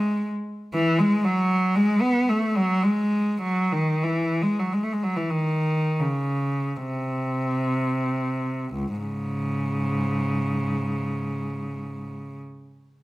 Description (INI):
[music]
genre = classical, free, expressive piece for unaccompanied cello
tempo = 24-64 BPM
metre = 3/4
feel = rubato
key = C# minor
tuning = A4 = 440 Hz
[part]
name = rich cello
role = solo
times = 0.0-12.4 s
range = C#2 to B3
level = -22 LUFS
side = equal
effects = none
[sound]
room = light reverb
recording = close, detailed microphones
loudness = -22 LUFS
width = side -18 dB against mid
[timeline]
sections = 0.0-8.7 A section; 8.7-13.0 B section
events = slowing down 0.0-8.7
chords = none